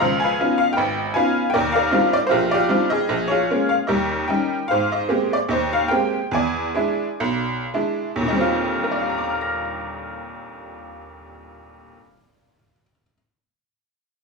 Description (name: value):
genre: solo jazz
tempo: 102-160 BPM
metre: 4/4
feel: swing 64% on 8ths, rubato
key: Eb major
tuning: A4 = 441 Hz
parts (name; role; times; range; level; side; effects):
- tack piano; solo; 0.0-13.1 s; Ab1 to Bb6; -19 LUFS; equal; none
room: moderate large studio reverb, RT60 1.1 s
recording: band playing live in one room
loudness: -18 LUFS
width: side -3 dB against mid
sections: 0.0-4.7 A section; 4.7-8.3 B section; 8.3-12.7 C section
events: slowing down 4.7-8.3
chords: 0.0 Db9; 1.5 Ebmaj13; 3.1 Bbm7; 3.9 Eb7; 4.7 Abmaj9; 6.3 E7; 8.3 Ebmaj13